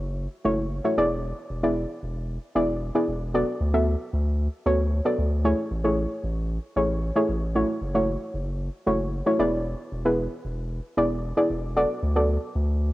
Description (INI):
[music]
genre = dance-pop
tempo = 114 BPM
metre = 4/4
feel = straight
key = unclear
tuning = A4 = 440 Hz
[part]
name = round analog bass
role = bass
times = 0.0-12.9 s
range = E1 to D2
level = -27 LUFS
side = equal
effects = none
[part]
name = soft round pluck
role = accompaniment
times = 0.4-12.6 s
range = A3 to E5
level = -24 LUFS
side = equal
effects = chorus
[sound]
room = moderate spring reverb, RT60 3.0 s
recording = home recording on cassette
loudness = -23 LUFS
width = side -17 dB against mid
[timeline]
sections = 0.0-12.9 A section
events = none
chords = 0.0 F#m7; 1.0 E7; 3.3 D6; 5.4 Amaj7; 7.6 F#m7; 9.4 E7; 11.8 D6